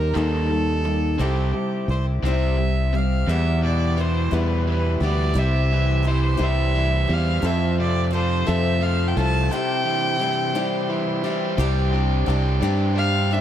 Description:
rock; 58 BPM (dotted quarters); 6/8; straight; A4 = 439 Hz
rich fiddle; melody; 0.0-13.4 s; G4 to A5; -26 LUFS; right 1 dB; dub echo
picked steel-string acoustic guitar; accompaniment; 0.0-13.4 s; C3 to A4; -28 LUFS; left 7 dB; dub echo
fingered electric bass; bass; 0.0-13.4 s; C2 to G2; -21 LUFS; equal
overdriven electric guitar; riff; 0.1-13.4 s; E2 to G4; -27 LUFS; right 2 dB; dub echo
bright tonewheel organ; sustained chords; 3.3-13.4 s; E3 to C5; -36 LUFS; right 4 dB; overdrive, stopped rotary speaker
little or no reverb; echo-heavy mix; -19 LUFS; side -10 dB against mid
0.0-3.3 A section; 3.3-11.6 B section; 11.6-13.4 C section
0.0 Eb; 1.2 C; 3.3 Em; 5.4 C; 7.4 F; 9.5 C; 11.6 Csus2

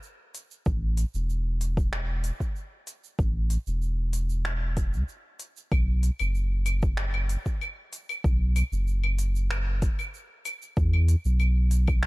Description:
organic downtempo; 95 BPM; 4/4; straight; A4 = 440 Hz
organic electronic drum kit; drums; 0.0-12.1 s; claves, finger snaps, hi-hat, shaker; -35 LUFS; equal
warm sub bass; bass; 0.7-12.1 s; E1 to E2; -24 LUFS; equal; sidechain pumping
electronic kick drum; drums; 0.7-12.0 s; -27 LUFS; equal; overdrive
little or no reverb; dark, warm production; -24 LUFS; side -21 dB against mid
0.0-12.1 A section
break 5.1-5.7

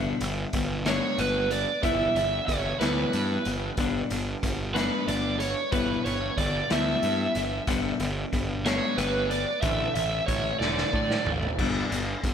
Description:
indie rock; 62 BPM (dotted quarters); 6/8; straight; G lydian; A4 = 439 Hz
raw garage guitar; riff; 0.0-12.3 s; A2 to E4; -31 LUFS; left 6 dB; overdrive
twelve-string electric guitar; riff; 0.0-11.6 s; E3 to D4; -40 LUFS; right 7 dB
fuzz picked electric bass; bass; 0.0-12.3 s; E1 to A2; -30 LUFS; right 1 dB; overdrive
raw garage drum kit; drums; 0.2-12.3 s; crash cymbal, hi-hat, kick drum, snare drum, toms; -31 LUFS; equal
overdriven electric guitar; melody; 0.9-11.3 s; B4 to E5; -29 LUFS; right 2 dB; lush chorus, tape echo
moderate lush hall reverb, RT60 2.6 s; dreamy mix soaked in reverb; -24 LUFS; side -8 dB against mid
0.0-11.6 A section
drum fill 10.6-11.6
0.0 G; 1.8 Em/G; 3.8 G; 5.7 Em/G; 7.7 G; 9.6 Asus4; 11.6 G

